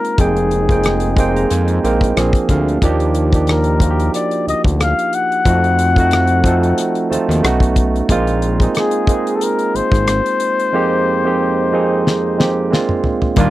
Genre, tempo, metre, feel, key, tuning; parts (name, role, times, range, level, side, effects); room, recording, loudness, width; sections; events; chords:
R&B, neo-soul; 91 BPM; 4/4; swing 54% on 16ths; A4 = 441 Hz
breathy flugelhorn; melody; 0.0-12.7 s; Ab4 to Gb5; -18 LUFS; left 4 dB
barky tine electric piano; accompaniment; 0.0-13.5 s; F2 to C6; -17 LUFS; right 3 dB; overdrive
damped 70s drum kit; drums; 0.0-13.5 s; hi-hat, kick drum, rim click, snare drum, toms; -17 LUFS; left 1 dB
fat analog bass; bass; 0.2-13.5 s; F1 to F2; -17 LUFS; equal
chorused pulse-width pad; sustained chords; 13.4-13.5 s; Bb2 to F4; -18 LUFS; left 4 dB
congas; percussion; 13.4-13.5 s; -25 LUFS; left 13 dB
light reverb; dry, close 1970s-style studio recording; -13 LUFS; side -16 dB against mid
0.0-13.4 A section
tine electric piano fill 0.8-2.8, 6.8-8.1; drum fill 12.0-13.4
0.2 Fm11; 2.2 Bb9; 2.8 Ebmaj9; 5.5 F7b9; 7.4 B9; 8.1 Bb9sus4; 10.7 Fm11; 12.7 Bb9